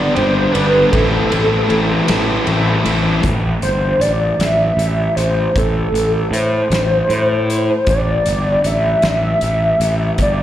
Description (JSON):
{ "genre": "indie rock", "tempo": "52 BPM (dotted quarters)", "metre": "6/8", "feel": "straight", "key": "A minor", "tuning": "A4 = 440 Hz", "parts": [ { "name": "hollow square lead", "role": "melody", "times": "0.0-10.4 s", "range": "A4 to E5", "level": "-17 LUFS", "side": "equal", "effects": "chorus, slapback echo, analog delay" }, { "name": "overdriven tine electric piano", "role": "second line", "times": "0.0-2.5 s", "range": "A3 to D4", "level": "-28 LUFS", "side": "right 1 dB", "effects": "none" }, { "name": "cranked stack guitar", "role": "riff", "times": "0.0-3.2 s", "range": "G2 to A4", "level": "-22 LUFS", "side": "right 6 dB", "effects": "overdrive, lush chorus, slapback echo, analog delay" }, { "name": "fuzz guitar", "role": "riff", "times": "0.0-3.2 s", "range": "G2 to E4", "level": "-18 LUFS", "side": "left 6 dB", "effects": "distortion, slapback echo" }, { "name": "fuzz fingered electric bass", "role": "bass", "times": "0.2-10.4 s", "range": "G1 to A2", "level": "-18 LUFS", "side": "equal", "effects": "overdrive" }, { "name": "loose indie drum kit", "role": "drums", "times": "0.2-10.4 s", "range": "hi-hat, kick drum, ride cymbal, snare drum", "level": "-22 LUFS", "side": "equal", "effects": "none" } ], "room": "light reverb", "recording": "live gig heard through the venue's PA, recital hall reverb", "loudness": "-13 LUFS", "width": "side -12 dB against mid", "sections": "0.0-3.2 A section; 3.2-10.4 B section", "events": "none", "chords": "0.0 G; 0.9 Am; 3.2 N.C.", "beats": "| 0.93 2.08 | 3.24 4.40 | 5.56 6.71 | 7.87 9.03 | 10.19" }